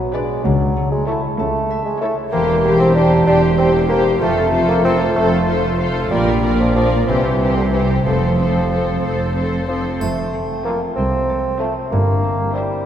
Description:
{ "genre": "cinematic, playful, whimsical film cue", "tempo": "63 BPM (dotted quarters)", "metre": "6/8", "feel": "straight", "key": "F major", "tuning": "A4 = 439 Hz", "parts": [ { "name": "mellow bassoon", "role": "accompaniment", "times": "0.0-12.9 s", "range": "D3 to D4", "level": "-19 LUFS", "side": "right 1 dB", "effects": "none" }, { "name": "concert harp", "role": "arpeggios", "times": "0.0-12.9 s", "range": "G2 to C6", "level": "-23 LUFS", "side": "left 3 dB", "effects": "none" }, { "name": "muted studio cello section", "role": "bass", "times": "0.0-12.7 s", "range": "C2 to C3", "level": "-23 LUFS", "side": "right 2 dB", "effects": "none" }, { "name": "muted studio double bass section", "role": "bass", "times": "0.0-12.7 s", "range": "E1 to C#2", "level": "-22 LUFS", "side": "right 1 dB", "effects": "none" }, { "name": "muted studio violin section", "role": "melody", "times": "0.1-12.8 s", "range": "C5 to D5", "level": "-29 LUFS", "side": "left 2 dB", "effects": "none" }, { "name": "muted studio violin section", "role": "second line", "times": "0.1-12.8 s", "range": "E4 to B4", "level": "-25 LUFS", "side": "left 3 dB", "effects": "none" }, { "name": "muted studio viola section", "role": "accompaniment", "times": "0.1-12.8 s", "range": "C4 to G4", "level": "-25 LUFS", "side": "equal", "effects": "none" }, { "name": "triangle", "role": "percussion", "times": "10.0-11.2 s", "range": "none", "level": "-42 LUFS", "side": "left 2 dB", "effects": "none" } ], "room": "wet church reverb, RT60 3.2 s", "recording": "none", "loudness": "-15 LUFS", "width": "side -10 dB against mid", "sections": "0.0-10.0 A section; 10.0-12.9 B section", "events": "none", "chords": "0.5 A/C#; 2.3 C/E; 4.2 F; 6.1 Bb; 7.1 C; 8.1 F; 11.9 C7/G" }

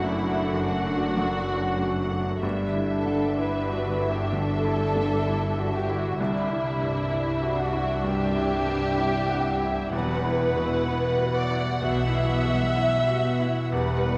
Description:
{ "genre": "cinematic, emotional film score for orchestra", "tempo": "64 BPM", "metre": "4/4", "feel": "rubato", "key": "E minor", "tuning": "A4 = 440 Hz", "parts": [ { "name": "muted studio violin section", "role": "melody", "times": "0.0-14.2 s", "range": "E5 to F#5", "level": "-36 LUFS", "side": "equal", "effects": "none" }, { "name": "muted studio violin section", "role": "second line", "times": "0.0-14.2 s", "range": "E4 to E5", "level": "-31 LUFS", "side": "equal", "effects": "none" }, { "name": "clear baby grand piano", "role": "accompaniment", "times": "0.0-14.2 s", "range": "C2 to F#5", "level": "-31 LUFS", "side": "equal", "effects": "none" }, { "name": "muted studio viola section", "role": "accompaniment", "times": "0.0-14.2 s", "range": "F#3 to E4", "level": "-35 LUFS", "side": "equal", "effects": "none" }, { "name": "concert harp", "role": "arpeggios", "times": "0.0-14.2 s", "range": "F#2 to E5", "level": "-39 LUFS", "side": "equal", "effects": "none" }, { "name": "muted studio cello section", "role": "bass", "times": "0.0-14.2 s", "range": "C2 to B2", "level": "-34 LUFS", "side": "equal", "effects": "none" }, { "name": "muted symphonic double bass section", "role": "bass", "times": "0.0-14.2 s", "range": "E1 to C2", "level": "-36 LUFS", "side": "equal", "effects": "none" } ], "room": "wet scoring stage reverb, RT60 1.8 s", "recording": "none", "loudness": "-25 LUFS", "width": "mono", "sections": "0.0-14.2 A section", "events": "none", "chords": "0.0 D/F#; 2.4 G5; 6.2 Cadd9; 9.9 Emadd9" }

